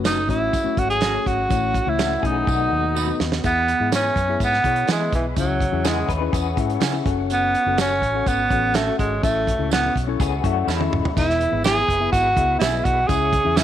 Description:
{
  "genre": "uptempo 1960s-style soul",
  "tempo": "124 BPM",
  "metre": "4/4",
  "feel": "straight",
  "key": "E major",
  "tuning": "A4 = 441 Hz",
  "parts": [
    { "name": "tine electric piano", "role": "accompaniment", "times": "0.0-13.6 s", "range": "A2 to F#5", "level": "-27 LUFS", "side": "left 9 dB", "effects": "none" },
    { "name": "tonewheel organ", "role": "sustained chords", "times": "0.0-13.6 s", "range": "D#3 to C#6", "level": "-35 LUFS", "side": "left 1 dB", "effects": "slow rotary speaker, chorus vibrato" },
    { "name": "electric guitar through a small old amp", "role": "stabs", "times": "0.0-13.6 s", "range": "B3 to B4", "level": "-34 LUFS", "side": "right 10 dB", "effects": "tape echo" },
    { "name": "vintage muted fingered electric bass", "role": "bass", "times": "0.0-13.6 s", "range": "D#1 to E3", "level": "-26 LUFS", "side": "equal", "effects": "none" },
    { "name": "warm soul drum kit", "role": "drums", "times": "0.0-13.6 s", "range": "hi-hat, kick drum, snare drum, splash cymbal, toms", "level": "-24 LUFS", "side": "right 2 dB", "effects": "none" },
    { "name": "breathy tenor saxophone", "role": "melody", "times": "0.1-13.6 s", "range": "E3 to G#4", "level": "-21 LUFS", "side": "right 2 dB", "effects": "none" },
    { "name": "tambourine", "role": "percussion", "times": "0.1-13.6 s", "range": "none", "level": "-38 LUFS", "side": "right 12 dB", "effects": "none" },
    { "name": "electric guitar through a small old amp", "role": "riff", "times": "2.0-7.0, 10.2-11.1 s", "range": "G#3 to B4", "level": "-28 LUFS", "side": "left 10 dB", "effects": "tremolo" }
  ],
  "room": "moderate echo chamber reverb, RT60 2.1 s",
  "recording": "1960s-style stereo with parts hard left and right",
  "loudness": "-18 LUFS",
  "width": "side -11 dB against mid",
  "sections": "0.0-3.4 A section; 3.4-13.6 B section",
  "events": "drum fill 2.5-3.4, 10.7-11.2; tenor saxophone solo 3.4-13.6",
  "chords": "0.0 F#m; 1.5 A; 2.5 B; 3.4 E; 5.4 C#m; 7.1 F#m; 9.2 A; 11.2 E; 13.1 C#m",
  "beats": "0.05 0.54 1.02 | 1.50 1.99 2.47 2.95 | 3.44 3.92 4.40 4.89 | 5.37 5.85 6.34 6.82 | 7.30 7.79 8.27 8.75 | 9.23 9.72 10.20 10.68 | 11.16 11.65 12.13 12.61 | 13.09 13.57"
}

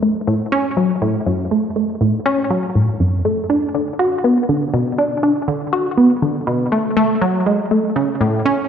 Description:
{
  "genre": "ambient",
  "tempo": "121 BPM",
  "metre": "4/4",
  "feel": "straight",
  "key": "F# minor",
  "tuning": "A4 = 441 Hz",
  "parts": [
    { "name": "tight sequenced synth", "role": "solo", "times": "0.0-8.7 s", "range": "F#2 to F#4", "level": "-15 LUFS", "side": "equal", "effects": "chorus, analog delay" }
  ],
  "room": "wet echo chamber reverb, RT60 2.2 s",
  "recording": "echo-heavy mix",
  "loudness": "-15 LUFS",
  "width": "side -8 dB against mid",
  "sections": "0.0-8.7 A section",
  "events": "none",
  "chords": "none",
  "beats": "0.03 0.52 1.02 | 1.51 2.01 2.50 3.00 | 3.50 3.99 4.49 4.99 | 5.48 5.98 6.47 6.97 | 7.46 7.96 8.46"
}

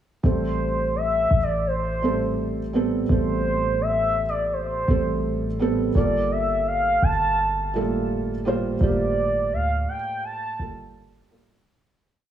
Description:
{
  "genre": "contemporary R&B",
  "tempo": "84 BPM",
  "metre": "4/4",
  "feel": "straight",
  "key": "A phrygian",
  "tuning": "A4 = 440 Hz",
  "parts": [
    { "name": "gliding portamento lead", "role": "melody", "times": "0.2-11.0 s", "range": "C5 to A5", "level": "-24 LUFS", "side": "equal", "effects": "chorus, digital delay" },
    { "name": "felt-muted upright piano", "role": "accompaniment", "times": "0.2-11.7 s", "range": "G3 to C5", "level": "-26 LUFS", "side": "right 2 dB", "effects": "none" },
    { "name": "clean 808-style bass", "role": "bass", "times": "0.2-11.3 s", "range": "G1 to D2", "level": "-26 LUFS", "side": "equal", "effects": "none" }
  ],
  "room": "light reverb, small room ambience",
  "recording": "studio reverb",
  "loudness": "-21 LUFS",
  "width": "side -10 dB against mid",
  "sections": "0.2-11.7 verse",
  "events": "fade-out 8.8-11.7",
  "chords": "0.2 Am9; 6.0 Gm9",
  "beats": "| 0.24 0.95 1.67 2.38 | 3.10 3.81 4.52 5.24 | 5.95 6.67 7.38 8.10 | 8.81 9.52 10.24 10.95"
}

